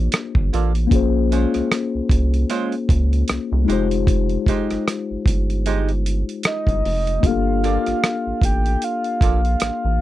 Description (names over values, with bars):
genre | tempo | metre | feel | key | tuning
R&B, neo-soul | 76 BPM | 4/4 | swing 57% on 16ths | G minor | A4 = 443 Hz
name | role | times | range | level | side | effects
mellow tine electric piano | accompaniment | 0.0-10.0 s | Ab3 to C5 | -23 LUFS | left 7 dB | auto-pan
rubbery square bass | bass | 0.0-10.0 s | F1 to Db2 | -20 LUFS | right 1 dB | none
dusty soul sampler-style drum kit | drums | 0.1-9.8 s | hi-hat, kick drum, rim click | -20 LUFS | right 1 dB | none
archtop guitar, miked and amplified | second line | 0.5-9.4 s | Ab3 to D5 | -25 LUFS | right 8 dB | none
soft octave-layered synth lead | melody | 6.5-10.0 s | Eb5 to G5 | -24 LUFS | right 1 dB | chorus
room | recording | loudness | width
little or no reverb | dry, close 1970s-style studio recording | -17 LUFS | side -14 dB against mid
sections
0.0-10.0 A section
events
none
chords
0.0 Gm9; 0.9 Bbm9; 3.7 Fm9; 7.2 Gm9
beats
0.13 | 0.92 1.71 2.50 3.29 | 4.08 4.86 5.65 6.44 | 7.23 8.02 8.81 9.60